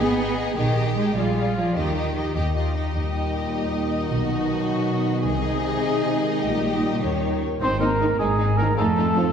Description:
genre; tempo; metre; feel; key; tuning
cinematic; 103 BPM (dotted quarters); 6/8; straight; Eb major; A4 = 440 Hz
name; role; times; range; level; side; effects
warm symphonic violin section; melody; 0.0-9.2 s; Eb4 to Eb5; -32 LUFS; left 6 dB; none
rich studio violin section; second line; 0.0-9.2 s; Eb4 to Ab4; -30 LUFS; left 4 dB; none
clear symphonic viola section; accompaniment; 0.0-9.2 s; C4 to Ab4; -31 LUFS; equal; none
rich studio cello section; bass; 0.0-9.3 s; Eb2 to C4; -27 LUFS; right 1 dB; none
warm studio double bass section; bass; 0.0-9.3 s; Ab1 to F2; -26 LUFS; right 1 dB; none
clear trombone section; sustained chords; 2.9-9.2 s; F2 to F3; -29 LUFS; right 3 dB; none
mellow French horn section; sustained chords; 3.0-9.2 s; F#3 to Eb4; -28 LUFS; left 2 dB; none
dark cor anglais; second line; 7.6-9.3 s; Ab4 to C5; -27 LUFS; right 3 dB; none
mellow hollow silver concert flute; second line; 7.6-9.3 s; Ab5 to C6; -28 LUFS; left 1 dB; none
clear trumpet; stabs; 7.6-9.3 s; Ab4 to C5; -26 LUFS; right 1 dB; none
room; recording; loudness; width
wet concert hall reverb, RT60 2.1 s; heard from further back in the room; -20 LUFS; side -7 dB against mid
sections
0.0-2.9 A section; 2.9-7.6 B section; 7.6-9.3 C section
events
none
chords
0.0 Abm; 0.6 Bb7sus4; 1.2 Bb7; 1.8 Eb; 4.1 B; 5.3 Ab/C; 6.4 Eb/Bb; 7.0 Eb7; 7.6 Ab; 8.8 F7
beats
| 0.58 1.16 | 1.76 2.35 | 2.95 3.53 | 4.11 4.69 | 5.27 5.85 | 6.43 7.03 | 7.62 8.20 | 8.78

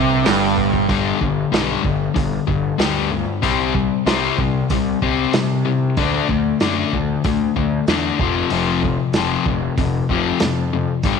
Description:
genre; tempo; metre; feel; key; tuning
classic rock; 95 BPM; 4/4; straight; unclear; A4 = 440 Hz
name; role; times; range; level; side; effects
tonewheel organ; sustained chords; 0.0-0.9 s; B3 to G4; -32 LUFS; right 2 dB; none
crunchy overdriven guitar; riff; 0.0-0.9 s; G2 to C3; -19 LUFS; right 15 dB; none
sludgy distorted guitar; riff; 0.0-11.2 s; F2 to D4; -18 LUFS; left 9 dB; overdrive
fuzz picked electric bass; bass; 0.0-11.2 s; F1 to C3; -25 LUFS; right 3 dB; overdrive
vintage drum kit; drums; 0.3-11.2 s; hi-hat, kick drum, snare drum; -23 LUFS; right 2 dB; none
room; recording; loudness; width
light reverb; 1960s-style stereo with parts hard left and right, lossy compression artefacts; -16 LUFS; side -6 dB against mid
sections
0.9-11.2 A section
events
drum fill 0.6-0.9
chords
0.0 G; 0.9 G5; 3.4 C5; 6.0 D5; 8.2 F5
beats
0.26 | 0.89 1.53 2.16 2.80 | 3.43 4.07 4.70 5.34 | 5.97 6.61 7.24 7.87 | 8.51 9.14 9.77 10.40 | 11.04

